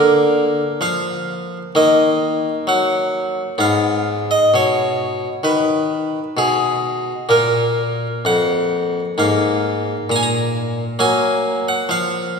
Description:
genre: classical, baroque-style suite movement for harpsichord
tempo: 65 BPM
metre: 4/4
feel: rubato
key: unclear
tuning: A4 = 441 Hz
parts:
  - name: harpsichord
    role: solo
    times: 0.0-12.4 s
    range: F2 to Bb5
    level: -15 LUFS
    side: equal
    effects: none
room: wet concert hall reverb, RT60 2.4 s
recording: recorded in a church or concert hall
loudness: -15 LUFS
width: side -5 dB against mid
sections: 0.0-12.4 A section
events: none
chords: 0.0 Bb/D; 1.8 Ebm; 3.6 Abm; 7.3 Bb5; 9.2 Bb5/Ab; 11.0 Ebm (rootless)

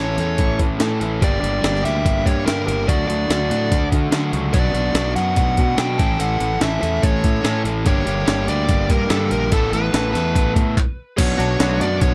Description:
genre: indie rock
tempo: 144 BPM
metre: 4/4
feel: straight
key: unclear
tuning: A4 = 440 Hz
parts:
  - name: smooth overdriven lead guitar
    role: melody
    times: 0.0-12.1 s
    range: A4 to G5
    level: -26 LUFS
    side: equal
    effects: analog delay
  - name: overdriven electric guitar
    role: riff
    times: 0.0-12.1 s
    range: G2 to A4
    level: -25 LUFS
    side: equal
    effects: none
  - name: fuzz fingered electric bass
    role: bass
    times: 0.0-12.1 s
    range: G1 to D3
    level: -25 LUFS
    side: equal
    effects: overdrive
  - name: breakbeat sampler-style drum kit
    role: drums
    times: 0.2-12.1 s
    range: crash cymbal, handclaps, hi-hat, kick drum, snare drum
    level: -22 LUFS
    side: equal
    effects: none
  - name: twangy electric guitar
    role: riff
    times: 11.4-11.9 s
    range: F#3 to F#4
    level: -27 LUFS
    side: equal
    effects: lush chorus
room: little or no reverb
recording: dark, warm production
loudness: -19 LUFS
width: mono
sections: 0.0-11.2 A section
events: stop 10.8-11.2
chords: 0.0 A; 1.2 Gm6; 2.9 D; 4.5 Bm; 6.0 A; 7.9 Gm; 9.5 Asus2; 11.2 Bm7

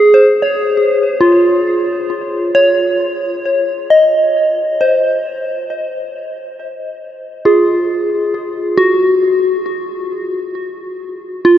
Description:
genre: ambient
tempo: 68 BPM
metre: 3/4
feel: straight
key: Eb dorian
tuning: A4 = 440 Hz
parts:
  - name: soft synth bell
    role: solo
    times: 0.0-11.6 s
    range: F4 to Eb5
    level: -12 LUFS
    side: equal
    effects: chorus, phaser, ping-pong delay
room: wet huge ambient reverb, RT60 7.6 s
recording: worn, warbling old tape, cassette tape, warbly pitch drift, nothing above 10.8 kHz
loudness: -11 LUFS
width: side -11 dB against mid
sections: 0.0-4.3 A section; 4.3-11.6 B section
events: none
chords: 0.0 Absus4; 4.3 Ebmadd9; 9.7 N.C.

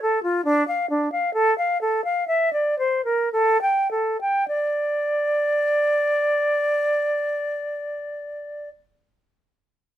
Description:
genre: classical, baroque-style fantasia for unaccompanied flute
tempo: 50-72 BPM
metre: 3/4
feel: rubato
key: D minor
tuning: A4 = 441 Hz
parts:
  - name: concert flute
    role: solo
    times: 0.0-8.7 s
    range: D4 to G5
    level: -20 LUFS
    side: equal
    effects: none
room: light reverb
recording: minimal, uncompressed stereo recording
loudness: -20 LUFS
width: side -11 dB against mid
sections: 0.0-4.5 A section; 4.5-7.9 B section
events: slowing down 0.0-4.5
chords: none

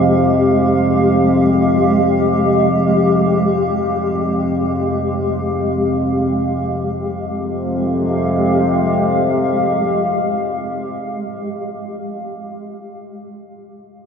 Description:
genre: dark ambient drone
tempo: free time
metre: none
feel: none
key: F minor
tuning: A4 = 443 Hz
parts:
  - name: granular cloud pad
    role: sustained chords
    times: 0.0-11.6 s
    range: Ab3 to F5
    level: -17 LUFS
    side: equal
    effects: built-in reverb
  - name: analog drone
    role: drone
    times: 0.0-11.3 s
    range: F2 to C3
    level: -18 LUFS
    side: equal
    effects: chorus
room: wet cathedral reverb, RT60 6.2 s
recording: nothing above 10.7 kHz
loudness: -14 LUFS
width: side -6 dB against mid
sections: 0.0-6.9 A section; 6.9-11.1 B section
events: none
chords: 0.0 Fmadd9

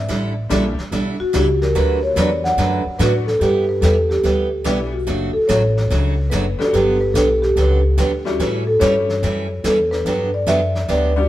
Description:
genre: country, western swing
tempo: 144 BPM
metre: 4/4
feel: swing 68% on 8ths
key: unclear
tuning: A4 = 439 Hz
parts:
  - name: marimba with soft mallets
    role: melody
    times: 0.0-11.3 s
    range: F#4 to F#5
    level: -19 LUFS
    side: equal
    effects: none
  - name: upright bass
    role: bass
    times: 0.0-11.3 s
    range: F#1 to A2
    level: -20 LUFS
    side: left 1 dB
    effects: none
  - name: picked steel-string acoustic guitar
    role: accompaniment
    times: 0.1-11.1 s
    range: C#3 to B4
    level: -22 LUFS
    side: right 4 dB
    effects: none
  - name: vintage brush drum kit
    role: drums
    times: 0.1-11.3 s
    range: brushed snare drum, hi-hat, snare drum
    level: -29 LUFS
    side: equal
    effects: none
  - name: tack piano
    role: accompaniment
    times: 0.5-11.3 s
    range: E3 to G4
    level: -25 LUFS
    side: left 4 dB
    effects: none
room: light reverb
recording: band playing live in one room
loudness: -15 LUFS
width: side -14 dB against mid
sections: 0.0-3.4 A section; 3.4-11.3 B section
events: marimba solo 0.0-3.4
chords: 0.1 A7sus4; 1.7 D6; 3.4 G6; 5.1 Dmaj7/F#; 6.7 Gmaj7; 8.4 A7; 10.1 Gmaj7

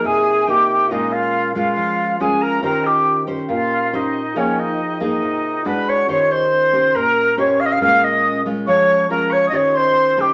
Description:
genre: bossa nova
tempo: 139 BPM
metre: 4/4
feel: straight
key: unclear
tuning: A4 = 440 Hz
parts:
  - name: bright alto flute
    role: melody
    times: 0.0-10.3 s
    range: Db4 to F5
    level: -19 LUFS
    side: equal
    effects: none
  - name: bright small flute group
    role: second line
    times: 0.0-10.3 s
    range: Db5 to F6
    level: -24 LUFS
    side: equal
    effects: none
  - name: bell-like tine electric piano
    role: accompaniment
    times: 0.0-10.3 s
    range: Db4 to G6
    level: -33 LUFS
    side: equal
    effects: none
  - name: nylon-string guitar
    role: accompaniment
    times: 0.0-10.3 s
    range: Bb2 to C5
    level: -25 LUFS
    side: equal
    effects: none
room: wet studio reverb, RT60 0.5 s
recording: nothing above 7.8 kHz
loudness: -17 LUFS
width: mono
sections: 0.0-10.3 A section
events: none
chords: 0.0 Fm11; 0.9 Bbm7; 2.6 Eb13; 4.4 Fm11; 5.6 E9; 6.1 Eb13; 7.8 Bbm7; 9.5 Eb13

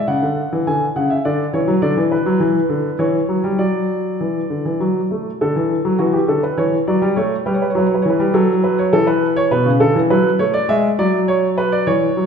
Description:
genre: classical, baroque-style two-part invention for grand piano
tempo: 102 BPM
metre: 3/4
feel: straight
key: D major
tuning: A4 = 441 Hz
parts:
  - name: warm concert grand piano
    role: solo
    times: 0.0-12.3 s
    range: B2 to G#5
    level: -15 LUFS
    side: equal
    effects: none
room: wet recital hall reverb, RT60 1.6 s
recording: heard from further back in the room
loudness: -15 LUFS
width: side -6 dB against mid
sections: 0.0-5.4 A section; 5.4-12.3 B section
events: none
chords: 0.1 F#5/C#; 1.2 Dmaj9; 1.8 D; 2.4 E5; 3.0 Em69; 3.6 D; 6.6 Em; 7.2 A7; 8.3 F#madd11; 8.9 A/E; 10.1 Bm/F#; 10.7 E7

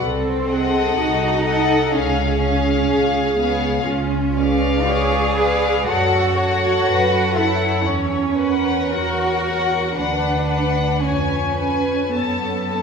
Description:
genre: classical, slow romantic movement for string orchestra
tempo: 52-65 BPM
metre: 4/4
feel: rubato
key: F# minor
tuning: A4 = 443 Hz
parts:
  - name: warm studio violin section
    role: melody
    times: 0.0-12.8 s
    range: E#5 to A5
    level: -23 LUFS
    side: left 6 dB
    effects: none
  - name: warm studio violin section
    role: second line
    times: 0.0-12.8 s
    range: G#4 to F#5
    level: -25 LUFS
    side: left 4 dB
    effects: none
  - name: warm studio viola section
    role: accompaniment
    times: 0.0-12.8 s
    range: E#4 to C#5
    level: -25 LUFS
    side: equal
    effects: none
  - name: warm studio cello section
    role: bass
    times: 0.0-12.8 s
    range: B3 to G#4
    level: -21 LUFS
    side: right 3 dB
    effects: none
  - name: warm studio double bass section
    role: bass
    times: 0.0-12.8 s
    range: C2 to F#2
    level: -24 LUFS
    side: right 2 dB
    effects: none
room: wet scoring stage reverb, RT60 2.0 s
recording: recorded in a church or concert hall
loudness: -16 LUFS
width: side -6 dB against mid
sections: 0.0-12.8 A section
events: none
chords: 0.0 Cdim7; 1.9 C#; 3.9 C#7b9; 5.9 F#m; 7.9 F#7/E; 10.0 Bm/D; 11.0 C#7/E#; 12.1 F#m

